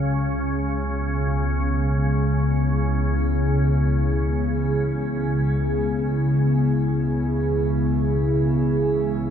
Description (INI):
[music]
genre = dark ambient drone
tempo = free time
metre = none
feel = none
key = unclear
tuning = A4 = 440 Hz
[part]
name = dark analog pad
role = sustained chords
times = 0.6-9.3 s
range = C#3 to G#4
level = -24 LUFS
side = right 1 dB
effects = chorus, phaser, shimmer reverb
[part]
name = gamelan-type bronze metallophone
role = arpeggios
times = 0.0-5.1 s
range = none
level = barely audible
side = none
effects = none
[part]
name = organ-like drone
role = drone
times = 0.0-9.3 s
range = C#2 to C#3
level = -21 LUFS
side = equal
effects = ensemble chorus, built-in reverb
[sound]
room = moderate huge ambient reverb, RT60 7.3 s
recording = dark, warm production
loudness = -20 LUFS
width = side -8 dB against mid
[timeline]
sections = 0.0-9.3 A section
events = none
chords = 0.0 C#m